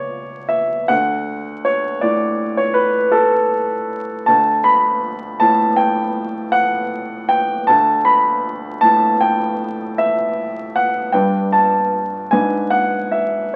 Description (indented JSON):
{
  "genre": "classical, romantic nocturne for solo piano",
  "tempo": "53 BPM (dotted quarters)",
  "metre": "9/8",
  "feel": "rubato",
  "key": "D major",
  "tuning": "A4 = 439 Hz",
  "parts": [
    { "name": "warm grand piano", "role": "solo", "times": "0.0-13.6 s", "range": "C#2 to B5", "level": "-17 LUFS", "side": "equal", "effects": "none" }
  ],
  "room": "moderate studio reverb, RT60 0.7 s",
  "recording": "very old 78 rpm record, vinyl crackle",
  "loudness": "-17 LUFS",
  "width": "mono",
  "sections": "0.0-13.6 A section",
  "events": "none",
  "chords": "0.0 N.C.; 0.9 D5; 11.1 G; 12.3 G#m7b5",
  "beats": "| 0.90 2.04 3.15 | 4.28 5.42 6.54 | 7.69 8.82 9.99 | 11.14 12.32 13.55"
}